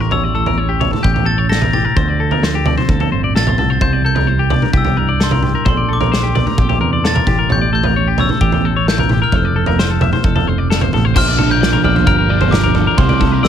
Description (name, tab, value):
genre	math rock and midwest emo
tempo	130 BPM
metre	4/4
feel	straight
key	unclear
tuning	A4 = 443 Hz
part	glockenspiel with soft plastic mallets	melody	0.0-13.5 s	C6 to Bb6	-20 LUFS	left 2 dB	none
part	mellow electric guitar	accompaniment	0.0-13.5 s	F2 to Bb4	-21 LUFS	right 9 dB	none
part	clean electric guitar	arpeggios	0.0-13.5 s	G4 to E5	-21 LUFS	left 8 dB	none
part	picked electric bass	bass	0.0-13.5 s	F1 to E2	-18 LUFS	equal	none
part	loose indie drum kit	drums	0.1-13.5 s	crash cymbal, kick drum, snare drum, toms	-16 LUFS	equal	none
part	raw garage guitar	riff	11.2-13.5 s	Bb2 to E4	-20 LUFS	right 4 dB	overdrive
room	light reverb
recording	none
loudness	-12 LUFS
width	side -9 dB against mid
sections	0.0-11.2 A section; 11.2-13.5 B section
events	none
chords	0.0 A7b9; 2.0 Dm7; 3.8 C9; 5.7 Bbmaj7; 7.3 A7b9; 9.3 Fmaj7; 11.2 Bb69